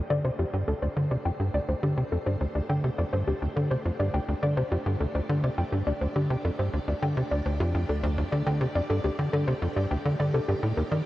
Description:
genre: ambient, sequencer-driven space music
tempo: 104 BPM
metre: 4/4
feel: straight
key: unclear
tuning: A4 = 440 Hz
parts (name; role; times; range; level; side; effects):
- string machine, full ensemble; sustained chords; 0.0-11.1 s; A3 to D5; -40 LUFS; equal; ensemble chorus
- warbly dusty pluck; arpeggios; 0.1-11.0 s; G4 to G5; -32 LUFS; left 2 dB; chorus, auto-pan, tape echo
- tight sequencer bass; riff; 0.1-11.0 s; D2 to Eb3; -26 LUFS; equal; analog chorus, tape echo
room: moderate huge ambient reverb, RT60 8.7 s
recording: worn, warbling old tape, cassette tape, warbly pitch drift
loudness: -25 LUFS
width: side -16 dB against mid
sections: 0.0-11.1 A section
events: fade-in on string machine 0.0-11.1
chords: 0.0 D7sus4; 10.5 Ebmaj7

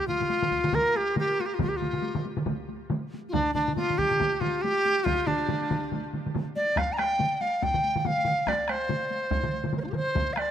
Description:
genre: japanese traditional, taiko drum ensemble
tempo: 140 BPM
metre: 4/4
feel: swing 60% on 16ths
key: unclear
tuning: A4 = 444 Hz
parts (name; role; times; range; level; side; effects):
- bright large dizi; melody; 0.0-10.5 s; D4 to Bb5; -26 LUFS; equal; none
- solo taiko drums; percussion; 0.1-10.5 s; none; -34 LUFS; left 6 dB; none
- solo taiko drums; percussion; 0.1-10.5 s; none; -33 LUFS; right 4 dB; none
- taiko ensemble; percussion; 0.1-10.5 s; none; -38 LUFS; left 2 dB; none
- taiko ensemble; percussion; 0.5-10.3 s; none; -34 LUFS; right 1 dB; none
room: moderate huge ambient reverb, RT60 4.3 s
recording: none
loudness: -24 LUFS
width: side -10 dB against mid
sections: 0.0-6.8 A section; 6.8-10.5 B section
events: speeding up 0.0-10.5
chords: none

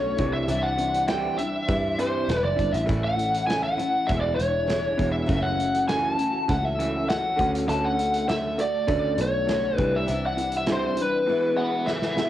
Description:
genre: folk rock and heartland rock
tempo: 100 BPM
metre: 4/4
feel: straight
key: unclear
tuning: A4 = 440 Hz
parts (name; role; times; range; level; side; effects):
- lead guitar through a small cranked amp; melody; 0.0-12.3 s; B4 to A5; -25 LUFS; equal; overdrive, cassette tape, analog delay
- picked steel-string acoustic guitar; accompaniment; 0.0-12.3 s; F#2 to F#4; -31 LUFS; left 3 dB; cassette tape, plate reverb
- mellow tonewheel organ; sustained chords; 0.0-12.3 s; C4 to C#5; -37 LUFS; right 1 dB; none
- electric guitar through a small old amp; riff; 0.0-12.3 s; E2 to C#4; -31 LUFS; right 2 dB; harmonic tremolo, cassette tape
- picked electric bass; bass; 0.0-11.2 s; E1 to G2; -30 LUFS; equal; none
- loose indie drum kit; drums; 0.2-12.3 s; hi-hat, kick drum, snare drum; -31 LUFS; equal; cassette tape
room: moderate small room reverb, RT60 0.6 s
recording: home recording on cassette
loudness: -22 LUFS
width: side -12 dB against mid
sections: 0.0-12.3 A section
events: drum fill 11.9-12.3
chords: 0.2 Cadd9; 2.9 A; 4.1 E7; 5.3 F#m7; 7.4 Dmaj7; 9.8 Cadd9; 11.3 E

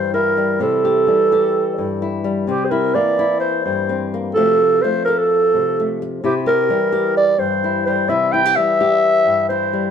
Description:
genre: highlife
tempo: 128 BPM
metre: 4/4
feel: straight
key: C mixolydian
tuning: A4 = 440 Hz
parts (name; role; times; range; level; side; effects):
- growling clarinet; melody; 0.0-9.9 s; G4 to G5; -16 LUFS; right 1 dB; none
- flamenco guitar; accompaniment; 0.0-9.9 s; G2 to A4; -21 LUFS; left 3 dB; none
room: wet studio reverb, RT60 0.7 s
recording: band playing live in one room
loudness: -15 LUFS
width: side -7 dB against mid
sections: 0.0-9.9 A section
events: none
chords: 0.0 C; 2.5 C7; 4.4 F/C; 6.2 C

